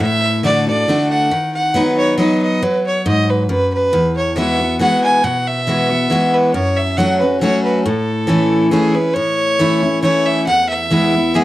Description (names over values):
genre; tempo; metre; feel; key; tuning
bluegrass; 138 BPM; 3/4; straight; A major; A4 = 440 Hz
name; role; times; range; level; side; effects
rich fiddle; melody; 0.0-11.4 s; G#4 to G#5; -17 LUFS; equal; slapback echo
picked steel-string acoustic guitar; accompaniment; 0.0-11.4 s; E2 to B4; -15 LUFS; equal; none
room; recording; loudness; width
moderate booth ambience, RT60 0.2 s; dry, close 1970s-style studio recording; -13 LUFS; side -15 dB against mid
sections
0.0-9.2 A section; 9.2-11.4 B section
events
none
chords
0.0 D; 1.3 B/D#; 3.9 Eadd9; 6.5 F#m; 7.9 A; 10.5 E